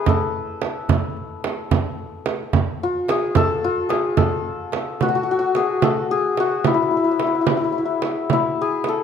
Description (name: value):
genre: Persian modal ensemble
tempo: 73 BPM (dotted quarters)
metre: 6/8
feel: straight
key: A avaz esfahan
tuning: A4 = 438 Hz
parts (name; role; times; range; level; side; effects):
- santur; melody; 0.0-9.0 s; E4 to B4; -21 LUFS; left 4 dB; none
- frame drum; percussion; 0.1-9.0 s; none; -23 LUFS; right 6 dB; none
- tombak; percussion; 0.1-4.9 s; none; -23 LUFS; right 4 dB; none
room: light reverb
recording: close, detailed microphones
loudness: -18 LUFS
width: side -7 dB against mid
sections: 0.0-5.0 A section; 5.0-9.0 B section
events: none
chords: none